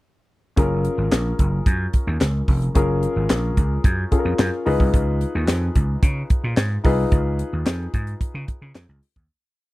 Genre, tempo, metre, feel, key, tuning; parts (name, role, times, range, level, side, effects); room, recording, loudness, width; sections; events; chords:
early-eighties boogie funk; 110 BPM; 4/4; straight; F# major; A4 = 440 Hz
warm concert grand piano; accompaniment; 0.6-9.0 s; C#4 to B4; -25 LUFS; left 3 dB
vintage slap bass; bass; 0.6-9.3 s; E#1 to C#3; -22 LUFS; equal
tight funk drum kit; drums; 0.6-9.3 s; handclaps, hi-hat, kick drum, snare drum; -19 LUFS; equal
little or no reverb; dry, close 1970s-style studio recording; -18 LUFS; side -18 dB against mid
0.6-9.3 verse
fade-out 7.1-9.3
0.6 F#maj9; 4.7 C#7